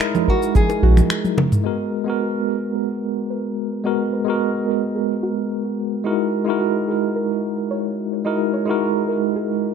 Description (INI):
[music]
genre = sunset chillout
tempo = 109 BPM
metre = 4/4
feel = straight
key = G# minor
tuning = A4 = 442 Hz
[part]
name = nylon-string guitar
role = melody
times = 0.0-1.3 s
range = F#4 to A#4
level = -26 LUFS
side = left 2 dB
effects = digital delay
[part]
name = tine electric piano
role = accompaniment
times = 0.0-9.7 s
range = G#3 to A#4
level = -20 LUFS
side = moving between left 4 dB and right 7 dB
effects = medium stereo tremolo, auto-pan, tape echo
[part]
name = smooth R&B drum kit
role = drums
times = 0.0-1.6 s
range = congas, finger snaps, shaker, toms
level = -20 LUFS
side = right 2 dB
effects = none
[part]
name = soft round pluck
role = arpeggios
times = 0.3-9.5 s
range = F#4 to D#5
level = -30 LUFS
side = right 6 dB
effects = chorus, tape echo
[part]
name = electronic kick drum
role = drums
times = 0.3-0.7 s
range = none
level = -18 LUFS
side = equal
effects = none
[part]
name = bongos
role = percussion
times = 0.7-1.5 s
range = none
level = -28 LUFS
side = left 6 dB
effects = none
[part]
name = round analog bass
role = bass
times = 0.8-1.0 s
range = A#1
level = -13 LUFS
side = equal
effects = none
[sound]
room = light reverb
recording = dark, warm production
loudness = -18 LUFS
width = side -6 dB against mid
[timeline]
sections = 0.0-1.7 A section; 1.7-9.7 B section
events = break 1.1-1.7; drum fill 1.2-1.7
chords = 0.0 F#13; 1.7 G#m9; 6.1 F#13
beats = 0.00 0.55 1.10 | 1.65 2.20 2.75 3.31 | 3.85 4.41 4.96 5.51 | 6.06 6.61 7.16 7.71 | 8.26 8.81 9.36